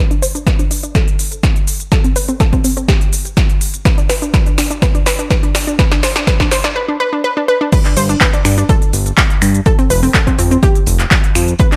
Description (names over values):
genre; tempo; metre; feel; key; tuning
progressive house; 124 BPM; 4/4; straight; G mixolydian; A4 = 440 Hz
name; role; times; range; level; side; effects
analog pluck; arpeggios; 0.0-11.8 s; C4 to C5; -20 LUFS; equal; chorus, sidechain pumping, tape echo
big-room dance drum kit; drums; 0.1-11.8 s; crash cymbal, finger snaps, handclaps, hi-hat, shaker, snare drum; -20 LUFS; equal; overdrive, sidechain pumping on perc, high-pass filter on perc, sidechain pumping on hats, high-pass filter on hats, high-pass filter on snare, sidechain pumping on cymbals, high-pass filter on cymbals, high-pass filter on room
electronic kick drum; drums; 0.5-11.7 s; none; -16 LUFS; equal; overdrive
jazz brush drum kit; drums; 7.7-11.7 s; hi-hat, snare drum; -36 LUFS; equal; none
fat analog bass; bass; 8.0-11.5 s; F1 to G2; -16 LUFS; equal; tube saturation, sidechain pumping
room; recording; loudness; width
digital ambience; none; -13 LUFS; mono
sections
0.0-7.7 A section; 7.7-11.8 B section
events
build-up 0.0-7.7; drum fill 0.0-6.8; filter sweep on synth arpeggio sound 0.0-7.7; break 6.8-7.7; drop 7.7-11.8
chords
0.0 N.C.; 7.7 G5; 9.7 F5